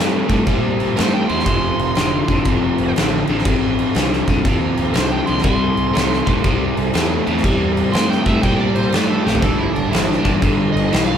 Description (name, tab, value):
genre	blues rock power trio and southern rock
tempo	120 BPM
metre	4/4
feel	swing 66% on 8ths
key	C mixolydian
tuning	A4 = 438 Hz
part	crunchy overdriven guitar	riff	0.0-11.2 s	F2 to A3	-18 LUFS	left 1 dB	none
part	fuzz fingered electric bass	bass	0.0-11.2 s	F1 to Bb2	-24 LUFS	equal	overdrive
part	oversized low-tuned drum kit	drums	0.3-11.1 s	crash cymbal, kick drum, snare drum, toms	-19 LUFS	equal	none
part	smooth overdriven lead guitar	second line	1.0-11.2 s	D4 to C6	-24 LUFS	right 2 dB	none
room	light reverb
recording	band playing live in one room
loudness	-15 LUFS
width	side -8 dB against mid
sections	0.0-11.2 A section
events	lead electric guitar solo 0.0-11.2; drum fill 9.2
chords	0.0 C7(no3); 1.5 F; 5.4 C; 9.4 G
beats	0.46 0.96 | 1.46 1.96 2.46 2.96 | 3.45 3.95 4.45 4.95 | 5.45 5.95 6.44 6.94 | 7.44 7.94 8.43 8.93 | 9.43 9.93 10.43 10.92